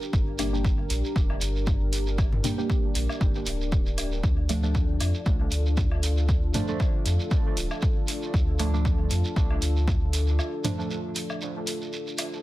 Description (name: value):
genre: dub techno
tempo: 117 BPM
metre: 4/4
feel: swing 55% on 16ths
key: unclear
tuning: A4 = 439 Hz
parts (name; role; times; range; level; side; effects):
- dark analog pad; sustained chords; 0.0-12.4 s; D4 to Bb4; -34 LUFS; left 1 dB; chorus, sidechain pumping
- deep mellow chord stab; stabs; 0.0-12.4 s; F3 to G4; -33 LUFS; right 2 dB; chorus, phaser, sidechain pumping, dub echo
- shekere; percussion; 0.0-12.4 s; none; -37 LUFS; right 4 dB; none
- pure sine sub bass; bass; 0.1-10.4 s; D1 to F2; -26 LUFS; equal; sidechain pumping
- electronic kick drum; drums; 0.1-10.0 s; none; -25 LUFS; equal; overdrive
- electronic hi-hat; drums; 0.4-12.3 s; none; -34 LUFS; equal; overdrive
- electronic woodblock and toms; percussion; 0.4-12.3 s; none; -35 LUFS; left 1 dB; sidechain pumping on perc, sidechain pumping on toms, dub echo
room: little or no reverb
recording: dense, heavily limited modern master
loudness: -23 LUFS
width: side -16 dB against mid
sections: 0.0-12.4 A section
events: break 10.4-12.4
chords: 0.0 Gm; 4.2 Dm